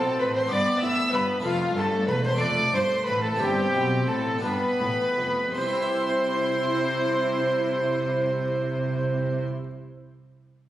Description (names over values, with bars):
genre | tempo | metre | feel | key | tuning
classical, baroque-style concerto movement with solo episodes | 52-65 BPM (dotted quarters) | 6/8 | straight | C major | A4 = 443 Hz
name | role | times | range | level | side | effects
dark chamber violin section | melody | 0.0-9.4 s | F5 to E6 | -30 LUFS | equal | none
warm chamber violin section | second line | 0.0-9.4 s | F4 to E5 | -30 LUFS | equal | none
harpsichord | accompaniment | 0.0-9.7 s | E2 to E5 | -34 LUFS | equal | none
warm chamber viola section | accompaniment | 0.0-9.4 s | A3 to E4 | -30 LUFS | equal | none
bright alto recorder | melody | 0.2-9.4 s | F4 to E5 | -28 LUFS | equal | none
warm chamber cello section | bass | 0.2-9.4 s | E2 to C3 | -32 LUFS | equal | none
warm symphonic double bass section | bass | 0.2-9.4 s | E1 to C2 | -33 LUFS | right 2 dB | none
room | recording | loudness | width
wet recital hall reverb, RT60 1.8 s | recorded on a phone in the room, studio reverb, compression | -22 LUFS | side -13 dB against mid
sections
0.0-5.6 A section; 5.6-10.1 B section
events
slowing down 0.5-5.6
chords
0.0 F; 0.5 G69; 1.4 F; 2.4 Dm/F; 3.4 C/G; 4.4 G7; 5.6 C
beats
0.51 | 1.44 2.40 | 3.39 4.44 | 5.56 6.69 | 7.83 8.97